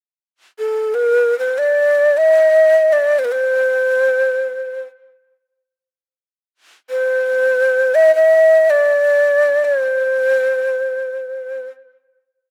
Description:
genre	arabic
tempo	free time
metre	none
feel	none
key	C maqam rast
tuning	A4 = 437 Hz
part	breathy hollow ney	melody	0.6-11.7 s	A4 to E5-43c	-15 LUFS	equal	slapback echo
room	little or no reverb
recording	recorded outdoors, with no room sound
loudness	-15 LUFS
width	mono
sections	0.0-12.5 A section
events	none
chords	none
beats	free time

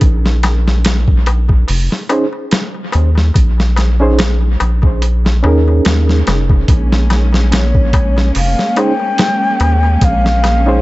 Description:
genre	trip hop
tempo	72 BPM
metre	4/4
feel	swing 55% on 16ths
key	Bb dorian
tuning	A4 = 442 Hz
part	overdriven reed electric piano	accompaniment	0.0-10.8 s	Db4 to C5	-19 LUFS	right 2 dB	harmonic tremolo, tape echo
part	round analog bass	bass	0.0-10.8 s	F1 to Eb2	-12 LUFS	equal	none
part	boom bap sampler-style drum kit	drums	0.0-10.7 s	hi-hat, kick drum, snare drum	-15 LUFS	equal	dub echo
part	darbuka	percussion	0.0-10.8 s	none	-24 LUFS	left 3 dB	none
part	warm symphonic string section	sustained chords	6.7-10.8 s	Ab3 to Db4	-20 LUFS	equal	none
part	mellow hollow concert flute	melody	7.5-10.8 s	Db5 to G5	-17 LUFS	left 1 dB	vintage 12-bit sampler grit, tape echo
room	small room ambience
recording	echo-heavy mix, nothing above 7.9 kHz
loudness	-10 LUFS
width	side -19 dB against mid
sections	0.0-10.8 A section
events	none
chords	0.0 Bbm11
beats	| 0.02 0.85 1.69 2.52 | 3.35 4.19 5.02 5.85 | 6.69 7.52 8.35 9.19 | 10.02

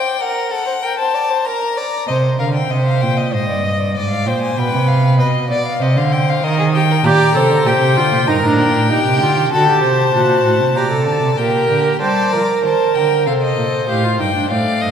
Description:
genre	classical, baroque-style fugue for string quartet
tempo	96 BPM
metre	4/4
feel	straight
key	C minor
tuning	A4 = 439 Hz
part	rich violin	melody	0.0-14.9 s	C5 to Bb5	-20 LUFS	left 5 dB	none
part	clear violin	second line	0.0-14.9 s	G4 to Eb5	-20 LUFS	left 1 dB	none
part	rich cello	bass	2.1-14.9 s	G2 to G3	-17 LUFS	right 2 dB	none
part	rich viola	accompaniment	7.0-14.9 s	A3 to C5	-17 LUFS	right 3 dB	none
room	wet church reverb, RT60 2.6 s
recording	recorded in a church or concert hall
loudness	-13 LUFS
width	side -8 dB against mid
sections	0.0-2.1 A section; 2.1-12.0 B section; 12.0-14.9 C section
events	none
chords	0.0 N.C.; 0.8 Gm/Bb (rootless); 2.1 Cm; 3.3 Ab; 4.6 G; 5.8 Cm; 7.0 Gm; 8.3 Eb/G (rootless); 9.5 D; 10.8 Gm/Bb; 12.0 Gm; 13.3 Cm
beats	0.20 0.83 1.45 | 2.08 2.71 3.33 3.95 | 4.57 5.19 5.81 6.43 | 7.04 7.66 8.28 8.90 | 9.52 10.14 10.76 11.39 | 12.02 12.64 13.26 13.88 | 14.51

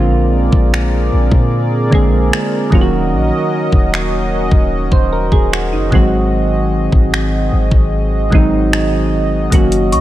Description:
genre	contemporary R&B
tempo	75 BPM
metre	4/4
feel	straight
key	unclear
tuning	A4 = 440 Hz
part	soft electric-piano-like synth keys	accompaniment	0.0-10.0 s	D3 to C5	-16 LUFS	right 2 dB	chorus
part	warm analog pad	sustained chords	0.0-10.0 s	C4 to Eb5	-20 LUFS	equal	chorus, sidechain pumping
part	warm 808-style bass	bass	0.0-10.0 s	Eb1 to Bb2	-16 LUFS	equal	none
part	smooth R&B drum kit	drums	0.5-10.0 s	finger snaps, hi-hat, kick drum	-14 LUFS	equal	none
part	celesta	texture	9.9-10.0 s	Db6	-14 LUFS	left 2 dB	none
room	little or no reverb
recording	none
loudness	-11 LUFS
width	side -14 dB against mid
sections	0.0-10.0 A section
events	break 0.0-9.5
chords	0.0 Bb9; 2.7 Ebm7; 5.9 Ab7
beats	0.72 1.52 2.32 | 3.12 3.92 4.72 5.52 | 6.32 7.12 7.92 8.72 | 9.52

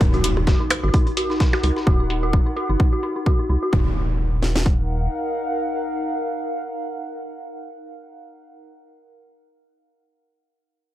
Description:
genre	minimal techno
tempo	129 BPM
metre	4/4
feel	swing 56% on 16ths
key	Eb minor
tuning	A4 = 442 Hz
part	dark detuned synth bell	riff	0.0-3.9 s	Eb4 to Gb4	-25 LUFS	equal	chorus, sidechain pumping, low-pass filter, diffuse ambient delay
part	rubbery square bass	bass	0.0-5.1 s	Eb1 to Db2	-22 LUFS	equal	sidechain pumping
part	dusty soul sampler-style drum kit	drums	0.0-1.9 s	hi-hat, snare drum	-35 LUFS	equal	high-pass filter on hats, high-pass filter on snare
part	house drum kit	drums	0.0-4.8 s	kick drum, snare drum	-18 LUFS	equal	none
part	impact	sound effects	0.0-8.5 s	none	-30 LUFS	equal	none
part	warbly tape-like pad	texture	0.0-8.2 s	Eb4 to Gb5	-28 LUFS	right 1 dB	chorus, built-in reverb, sidechain pumping
part	electronic hi-hat	drums	0.2-3.6 s	none	-28 LUFS	left 2 dB	low-pass filter on hats, low-pass filter on snare, low-pass filter on room
part	percussion blips	percussion	0.4-1.6 s	none	-25 LUFS	right 2 dB	analog delay
room	light reverb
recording	none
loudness	-19 LUFS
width	side -14 dB against mid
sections	0.0-3.7 A section; 3.7-7.5 B section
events	fade-out on ambient pad 0.0-3.7; impact 0.0-1.9; filter sweep on drum 0.0-3.7; filter sweep on analog synth bass 0.0-3.7; filter sweep on synth bell 0.0-3.7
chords	0.0 Ebm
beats	| 0.01 0.47 0.94 1.40 | 1.87 2.33 2.80 3.26 | 3.73 4.19 4.66 5.12 | 5.59 6.05 6.52 6.99

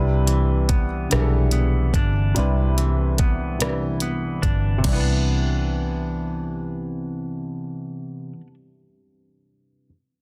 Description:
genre	slow six-eight R&B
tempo	48 BPM (dotted quarters)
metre	6/8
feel	straight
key	C major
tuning	A4 = 440 Hz
part	semi-hollow electric guitar	second line	0.0-8.5 s	C3 to D4	-31 LUFS	equal	none
part	dark baby grand piano	accompaniment	0.0-9.9 s	C3 to B4	-30 LUFS	equal	low-pass filter
part	vintage muted fingered electric bass	bass	0.0-8.3 s	G1 to C2	-24 LUFS	equal	none
part	smooth R&B drum kit	drums	0.3-5.0 s	crash cymbal, hi-hat, kick drum, rim click, toms	-26 LUFS	equal	none
room	light reverb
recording	dense, heavily limited modern master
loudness	-22 LUFS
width	mono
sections	0.0-4.8 A section; 4.8-7.3 B section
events	filter sweep on grand piano 0.0-4.8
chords	0.0 Cmaj9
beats	1.10 | 2.35 3.60 | 4.85 6.10

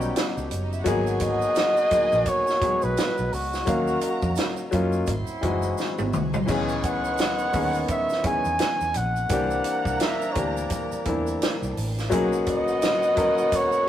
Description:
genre	lush 1970s-style soul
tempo	85 BPM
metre	4/4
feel	swing 58% on 16ths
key	unclear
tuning	A4 = 437 Hz
part	warm studio violin section	second line	0.0-13.9 s	G3 to C#6	-37 LUFS	right 2 dB	none
part	clear baby grand piano	accompaniment	0.0-13.9 s	D#3 to E#5	-27 LUFS	left 2 dB	none
part	clear trombone section	stabs	0.0-13.9 s	D#3 to F#4	-34 LUFS	right 2 dB	none
part	vintage muted fingered electric bass	bass	0.0-13.5 s	F#1 to F#2	-30 LUFS	right 1 dB	none
part	tube shaker	percussion	0.0-13.9 s	none	-45 LUFS	right 6 dB	none
part	compact cocktail drum kit	drums	0.2-13.7 s	crash cymbal, hi-hat, kick drum, snare drum, toms	-28 LUFS	right 1 dB	none
part	breathy flugelhorn	melody	1.2-13.9 s	F#4 to G#5	-24 LUFS	equal	none
room	moderate stone room reverb, RT60 1.1 s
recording	rough rehearsal-room recording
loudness	-21 LUFS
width	side -11 dB against mid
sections	0.0-13.9 A section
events	drum fill 5.8-6.5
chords	0.0 D#7alt; 0.9 G#m7; 3.7 D#m9; 5.1 G#7b13; 6.5 C#m9; 9.3 C9; 12.1 Bmaj13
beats	0.16 | 0.86 1.56 2.27 2.97 | 3.67 4.38 5.08 5.78 | 6.49 7.19 7.89 8.60 | 9.30 10.01 10.71 11.41 | 12.12 12.82 13.53

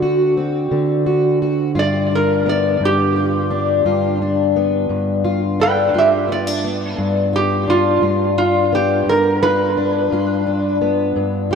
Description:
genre	acoustic country blues, solo or duo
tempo	58 BPM (dotted quarters)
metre	12/8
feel	straight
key	G mixolydian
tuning	A4 = 440 Hz
part	metal-body resonator slide guitar	melody	0.0-11.6 s	F4 to G5	-18 LUFS	right 3 dB	analog delay
part	fingerpicked plugged-in steel-string acoustic guitar	accompaniment	0.0-11.6 s	G2 to F#4	-16 LUFS	left 2 dB	wide subtle chorus
room	wet lush hall reverb, RT60 2.2 s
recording	dreamy mix soaked in reverb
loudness	-15 LUFS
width	side -6 dB against mid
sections	0.0-1.8 A section; 1.8-11.6 B section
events	resonator guitar played with a steel bar solo 1.8-11.6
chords	0.0 D7; 1.8 G7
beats	0.72 | 1.77 2.81 3.86 4.90 | 5.95 6.99 8.03 9.08 | 10.12 11.16

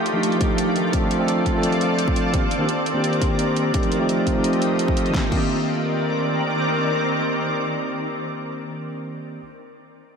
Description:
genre	liquid drum and bass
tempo	171 BPM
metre	4/4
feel	straight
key	C dorian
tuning	A4 = 441 Hz
part	shimmering ambient pad	sustained chords	0.0-8.7 s	Eb3 to Eb5	-23 LUFS	equal	chorus, built-in reverb, sidechain pumping
part	mellow tine electric piano	accompaniment	0.1-9.4 s	Eb3 to A4	-23 LUFS	equal	low-pass filter, analog delay
part	pop drum kit	drums	0.1-5.4 s	crash cymbal, hi-hat, snare drum	-31 LUFS	right 1 dB	studio reverb
part	electronic kick drum	drums	0.4-5.4 s	none	-24 LUFS	equal	studio reverb
room	wet lush hall reverb, RT60 1.7 s, digital ambience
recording	dreamy mix soaked in reverb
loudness	-19 LUFS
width	side -6 dB against mid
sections	0.0-5.1 A section; 5.1-8.0 B section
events	none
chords	0.0 Ebmaj9#11; 0.9 Dm7; 2.3 Cm9; 3.7 F9; 5.1 Cm9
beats	0.23 0.58 | 0.93 1.28 1.64 1.99 | 2.34 2.69 3.04 3.39 | 3.74 4.09 4.44 4.79 | 5.14 5.50 5.85 6.20 | 6.55 6.90 7.25 7.60

